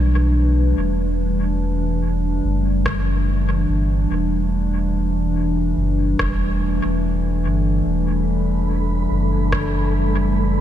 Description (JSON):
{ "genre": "ambient dub", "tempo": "72 BPM", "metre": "4/4", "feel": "swing 57% on 16ths", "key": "E minor", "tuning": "A4 = 440 Hz", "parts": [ { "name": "warbly tape-like pad", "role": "sustained chords", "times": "0.0-10.6 s", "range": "E3 to B4", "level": "-22 LUFS", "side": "equal", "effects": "chorus, built-in reverb" }, { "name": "warm sub bass", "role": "bass", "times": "0.0-10.6 s", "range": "E1 to B1", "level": "-20 LUFS", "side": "equal", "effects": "none" }, { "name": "electronic kick drum", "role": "drums", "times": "2.9-9.7 s", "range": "none", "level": "-29 LUFS", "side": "equal", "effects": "none" }, { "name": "electronic rim click", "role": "drums", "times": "2.9-9.7 s", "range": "none", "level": "-30 LUFS", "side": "equal", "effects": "dub echo" }, { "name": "wind-like tuned noise texture", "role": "texture", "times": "8.2-10.6 s", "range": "A3 to B5", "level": "-28 LUFS", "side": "equal", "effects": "built-in reverb" } ], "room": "light reverb, digital ambience", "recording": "none", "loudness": "-17 LUFS", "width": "side -11 dB against mid", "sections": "0.0-10.6 A section", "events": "none", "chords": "0.0 Em11", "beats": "0.36 | 1.19 2.02 2.86 3.69 | 4.52 5.36 6.19 7.02 | 7.86 8.69 9.52 10.36" }